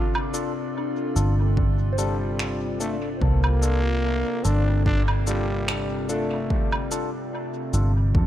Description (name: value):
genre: ambient dub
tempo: 73 BPM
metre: 4/4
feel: swing 54% on 16ths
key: unclear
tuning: A4 = 443 Hz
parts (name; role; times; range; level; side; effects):
- growling trombone; melody; 0.0-6.9 s; G3 to F4; -30 LUFS; equal; dub echo
- warbly tape-like pad; sustained chords; 0.0-8.3 s; C3 to D5; -30 LUFS; left 2 dB; chorus, built-in reverb
- soft synth bell; arpeggios; 0.0-8.3 s; C4 to D6; -37 LUFS; right 2 dB; chorus, phaser, dub echo
- vintage muted fingered electric bass; bass; 0.0-8.3 s; G1 to F2; -22 LUFS; equal; tube saturation
- electronic woodblock, cabasa and finger snaps; drums; 0.1-7.9 s; none; -31 LUFS; right 1 dB; dub echo
- barky tine electric piano; stabs; 0.3-7.9 s; D4 to A4; -33 LUFS; left 2 dB; phaser, dub echo
- electronic kick drum; drums; 1.6-8.3 s; none; -25 LUFS; equal; overdrive
room: light reverb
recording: none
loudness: -21 LUFS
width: side -12 dB against mid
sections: 0.0-8.3 A section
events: none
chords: 0.0 Dm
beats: 0.75 1.57 2.39 | 3.22 4.04 4.86 5.68 | 6.50 7.33 8.15